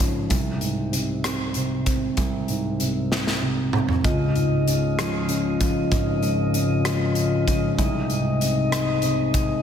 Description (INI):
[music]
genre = six-eight pop ballad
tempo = 64 BPM (dotted quarters)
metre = 6/8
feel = straight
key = Ab major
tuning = A4 = 440 Hz
[part]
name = felt-muted upright piano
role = accompaniment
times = 0.0-9.6 s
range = Ab1 to C4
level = -24 LUFS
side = right 1 dB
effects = none
[part]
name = modern studio drum kit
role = drums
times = 0.0-9.5 s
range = hi-hat, kick drum, rim click, snare drum, toms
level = -26 LUFS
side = equal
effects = none
[part]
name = mellow tonewheel organ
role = sustained chords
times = 4.0-9.6 s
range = C3 to Eb5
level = -23 LUFS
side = left 2 dB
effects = slow rotary speaker
[sound]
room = wet lush hall reverb, RT60 2.6 s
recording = dreamy mix soaked in reverb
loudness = -20 LUFS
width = side -8 dB against mid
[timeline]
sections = 0.0-9.6 A section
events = drum fill 3.1-4.0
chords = 0.3 Ab/C; 4.0 Dbadd9; 7.8 Ab/C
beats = | 0.31 1.24 | 2.18 3.11 | 4.04 4.98 | 5.91 6.85 | 7.78 8.72